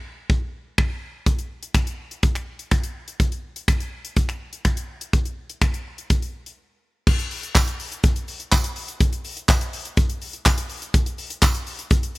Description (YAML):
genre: pop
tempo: 124 BPM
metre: 4/4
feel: straight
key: none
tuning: none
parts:
  - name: modern studio drum kit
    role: drums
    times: 0.3-12.2 s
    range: crash cymbal, finger snaps, handclaps, hi-hat, kick drum, shaker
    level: -20 LUFS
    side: equal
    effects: none
  - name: tambourine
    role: percussion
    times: 7.6-11.5 s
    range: none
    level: -32 LUFS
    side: right 3 dB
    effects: none
room: studio reverb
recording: rough home demo mix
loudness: -21 LUFS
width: side -22 dB against mid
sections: 0.0-7.1 A section; 7.1-12.2 B section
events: break 6.6-7.1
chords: none